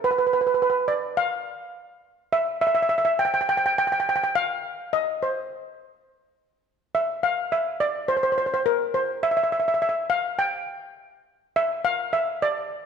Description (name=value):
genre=calypso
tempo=104 BPM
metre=4/4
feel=straight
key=unclear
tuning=A4 = 444 Hz
part: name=steel pan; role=solo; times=0.0-12.9 s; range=Bb4 to G5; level=-22 LUFS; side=equal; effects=none
room=moderate scoring stage reverb, RT60 1.6 s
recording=none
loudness=-21 LUFS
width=side -6 dB against mid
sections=0.0-12.9 A section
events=none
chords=none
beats=| 0.03 0.60 1.18 1.75 | 2.33 2.90 3.48 4.06 | 4.63 5.21 5.78 6.36 | 6.93 7.51 8.09 8.66 | 9.24 9.81 10.39 10.96 | 11.54 12.11 12.69